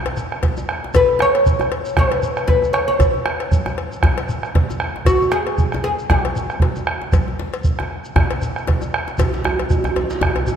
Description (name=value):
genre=west african traditional, West African drum ensemble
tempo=117 BPM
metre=4/4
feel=swing 56% on 16ths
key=unclear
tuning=A4 = 440 Hz
part: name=bombo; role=percussion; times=0.1-10.4 s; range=none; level=-19 LUFS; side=right 2 dB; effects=none
part: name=cowbell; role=percussion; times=0.1-10.5 s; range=none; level=-29 LUFS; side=left 4 dB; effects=none
part: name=djembe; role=percussion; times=0.1-10.5 s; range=none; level=-26 LUFS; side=left 3 dB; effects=none
part: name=shekere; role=percussion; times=0.2-10.6 s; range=none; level=-29 LUFS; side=left 2 dB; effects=none
part: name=oud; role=melody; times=1.0-8.6 s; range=F#4 to C#5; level=-18 LUFS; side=left 1 dB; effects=none
part: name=djembe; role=percussion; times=9.2-10.6 s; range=none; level=-21 LUFS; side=right 3 dB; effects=none
room=wet concert hall reverb, RT60 1.9 s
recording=none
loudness=-16 LUFS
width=side -8 dB against mid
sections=0.0-9.2 A section; 9.2-10.6 B section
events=none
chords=none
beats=0.43 | 0.95 1.47 1.98 2.50 | 3.01 3.52 4.04 4.55 | 5.07 5.58 6.10 6.61 | 7.13 7.64 8.16 8.67 | 9.19 9.70 10.21